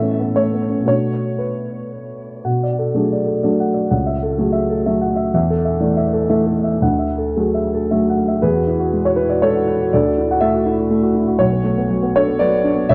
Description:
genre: neoclassical minimalist piano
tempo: 109-131 BPM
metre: 3/4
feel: rubato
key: B dorian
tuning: A4 = 440 Hz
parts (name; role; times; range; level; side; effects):
- dark grand piano; solo; 0.0-12.9 s; B1 to F#5; -18 LUFS; equal; tape echo
room: light reverb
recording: dark, warm production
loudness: -18 LUFS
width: mono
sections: 0.0-2.5 A section; 2.5-8.4 B section; 8.4-12.9 C section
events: none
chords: 0.0 Aadd9; 0.9 Bm7; 3.9 A6/C#; 5.3 Esus4; 6.8 Dadd9; 8.4 Eadd9; 9.9 Dadd9; 11.4 Bmadd9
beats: 0.36 | 0.87 1.40 1.92 | 2.45 2.95 3.44 | 3.92 4.40 4.86 | 5.33 5.81 6.29 | 6.82 7.37 7.91 | 8.44 8.94 9.44 | 9.93 10.42 10.91 | 11.40 11.90 12.39 | 12.87

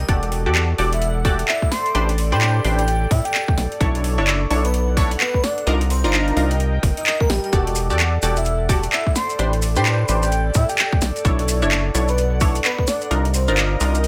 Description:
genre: UK garage, two-step garage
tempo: 129 BPM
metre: 4/4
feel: swing 61% on 16ths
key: E minor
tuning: A4 = 441 Hz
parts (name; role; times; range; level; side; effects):
- airy dreamy lead; melody; 0.0-13.5 s; G4 to C6; -28 LUFS; equal; chorus, tape echo
- rubbery square bass; bass; 0.0-14.1 s; E1 to A2; -23 LUFS; equal; none
- garage drum kit; drums; 0.0-14.1 s; handclaps, hi-hat, snare drum; -26 LUFS; equal; overdrive, small room reverb
- airy breathy pad; texture; 0.0-14.1 s; A4 to G5; -32 LUFS; equal; chorus, sidechain pumping
- punchy chord stab; stabs; 0.1-14.0 s; D4 to D5; -26 LUFS; equal; chorus, phaser, tape echo
- electronic kick drum; drums; 0.1-12.9 s; none; -23 LUFS; equal; small room reverb
- maracas; percussion; 7.5-14.1 s; none; -32 LUFS; equal; none
room: light reverb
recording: none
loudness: -19 LUFS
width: mono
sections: 0.0-14.1 A section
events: none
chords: 0.1 Em11; 1.7 Am11; 3.6 Bm11; 5.7 Cm11; 7.5 Em11; 9.2 Am11; 11.0 Bm11; 13.1 Cm11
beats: | 0.09 0.55 1.02 1.48 | 1.95 2.41 2.88 3.34 | 3.81 4.27 4.74 5.20 | 5.67 6.13 6.60 7.06 | 7.53 7.99 8.46 8.92 | 9.39 9.85 10.32 10.78 | 11.25 11.71 12.18 12.64 | 13.11 13.57 14.04

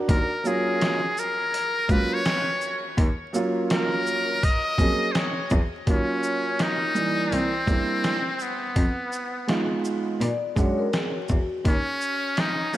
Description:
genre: hip hop, jazz-hop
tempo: 83 BPM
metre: 4/4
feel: swing 61% on 16ths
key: Eb minor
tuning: A4 = 444 Hz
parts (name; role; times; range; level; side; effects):
- dark baby grand piano; accompaniment; 0.0-12.8 s; Fb3 to D5; -27 LUFS; right 2 dB; none
- trumpet with metal mute; melody; 0.1-12.8 s; Cb4 to Eb5; -26 LUFS; left 1 dB; tape echo
- warm cello; bass; 0.1-11.7 s; C2 to Bb2; -27 LUFS; equal; none
- trip hop sampler-style drum kit; drums; 0.1-12.8 s; hi-hat, kick drum, shaker, snare drum; -26 LUFS; equal; none
- vibraphone with soft mallets; second line; 10.2-11.6 s; F#4 to D5; -31 LUFS; left 4 dB; none
room: moderate plate reverb, RT60 3.1 s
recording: dreamy mix soaked in reverb, vinyl crackle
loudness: -22 LUFS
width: side -14 dB against mid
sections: 0.0-5.9 A section; 5.9-12.8 B section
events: muted trumpet solo 0.0-5.9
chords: 0.1 Ebm9 (rootless); 5.9 Ebm9; 7.3 C7; 8.8 Fm7b5; 10.2 Bb7#9b13 (rootless); 11.7 Eb7(no3)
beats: | 0.09 0.81 1.53 2.25 | 2.98 3.70 4.42 5.15 | 5.87 6.59 7.32 8.04 | 8.76 9.48 10.21 10.93 | 11.65 12.38

